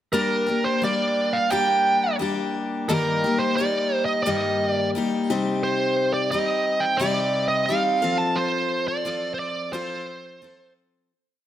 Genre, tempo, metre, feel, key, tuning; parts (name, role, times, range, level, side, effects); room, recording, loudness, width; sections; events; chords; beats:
rock; 88 BPM; 4/4; straight; G minor; A4 = 442 Hz
smooth overdriven lead guitar; melody; 0.1-10.7 s; Bb4 to A5; -23 LUFS; right 2 dB; slapback echo
picked steel-string acoustic guitar; accompaniment; 0.1-11.1 s; G2 to A4; -25 LUFS; left 3 dB
moderate plate reverb, RT60 2.9 s; -20 LUFS; side -11 dB against mid
0.1-11.1 verse
fade-out 8.4-11.1
0.1 Gm; 2.9 Eb/G; 5.3 Cm; 8.0 F
| 0.14 0.83 1.51 2.20 | 2.89 3.58 4.26 4.95 | 5.63 6.32 7.00 7.69 | 8.37 9.05 9.74 10.42